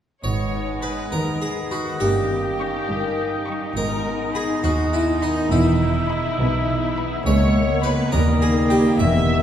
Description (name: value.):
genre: cinematic.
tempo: 69 BPM (dotted quarters).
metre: 6/8.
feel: straight.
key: G# minor.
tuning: A4 = 441 Hz.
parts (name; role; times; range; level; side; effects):
harpsichord; melody; 0.2-9.4 s; D#4 to E5; -26 LUFS; right 1 dB; none.
dark clarinet; second line; 0.2-9.4 s; A#3 to D#4; -30 LUFS; left 1 dB; none.
warm oboe; second line; 0.2-9.4 s; D#5 to E5; -30 LUFS; right 1 dB; none.
warm studio violin section; second line; 0.2-9.4 s; D#4 to E5; -28 LUFS; left 4 dB; none.
warm bassoon; accompaniment; 0.2-9.4 s; G3 to B3; -32 LUFS; right 1 dB; none.
warm studio viola section; accompaniment; 0.2-9.4 s; G#3 to D#4; -27 LUFS; equal; none.
concert harp; arpeggios; 0.2-9.4 s; G2 to B4; -28 LUFS; left 4 dB; none.
rich studio cello section; bass; 0.2-9.4 s; C#2 to B2; -27 LUFS; right 1 dB; none.
rich studio double bass section; bass; 0.2-9.4 s; E1 to D#2; -24 LUFS; right 2 dB; none.
rich studio violin section; melody; 0.8-8.9 s; G5 to C#6; -37 LUFS; left 4 dB; none.
room: wet concert hall reverb, RT60 1.9 s.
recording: none.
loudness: -18 LUFS.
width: side -10 dB against mid.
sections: 0.2-9.4 A section.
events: none.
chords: 0.2 G#m; 2.0 D#7/G; 3.8 G#m; 5.5 E; 7.3 C#m7; 8.1 D#.